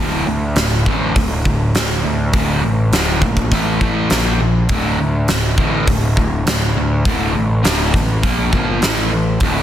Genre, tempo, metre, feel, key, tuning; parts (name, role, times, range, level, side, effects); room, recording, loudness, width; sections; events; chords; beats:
hard rock; 102 BPM; 4/4; straight; D minor; A4 = 438 Hz
overdriven semi-hollow guitar; riff; 0.0-9.6 s; D2 to Bb3; -18 LUFS; equal
fuzz picked electric bass; bass; 0.0-9.6 s; D1 to D2; -19 LUFS; equal; overdrive
big rock drum kit; drums; 0.6-9.5 s; hi-hat, kick drum, snare drum; -18 LUFS; equal
small room ambience; dense, heavily limited modern master; -14 LUFS; side -11 dB against mid
0.0-9.6 A section
0.0 D5; 3.5 A5; 4.1 Bb5; 4.7 D5; 8.2 Bb5; 8.8 A5
0.57 1.16 1.75 | 2.34 2.93 3.52 4.11 | 4.70 5.29 5.88 6.47 | 7.06 7.64 8.23 8.82 | 9.41